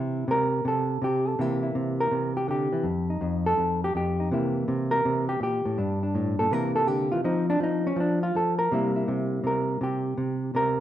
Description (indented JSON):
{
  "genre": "solo jazz",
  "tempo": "164 BPM",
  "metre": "4/4",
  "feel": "swing 66% on 8ths",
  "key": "C mixolydian",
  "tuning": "A4 = 440 Hz",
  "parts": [
    { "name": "hollow-body jazz guitar", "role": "solo", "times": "0.0-10.8 s", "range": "F2 to Bb4", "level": "-24 LUFS", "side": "equal", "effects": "none" }
  ],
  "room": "moderate large studio reverb, RT60 1.3 s",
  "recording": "minimal, uncompressed stereo recording",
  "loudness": "-24 LUFS",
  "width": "side -12 dB against mid",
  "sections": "0.0-1.4 A section; 1.4-10.8 A section",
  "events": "hollow-body jazz guitar solo 0.0-10.8",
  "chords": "0.0 C7; 2.8 F7; 4.3 C7; 5.8 Gm; 6.5 C7; 7.2 F5; 8.7 C7"
}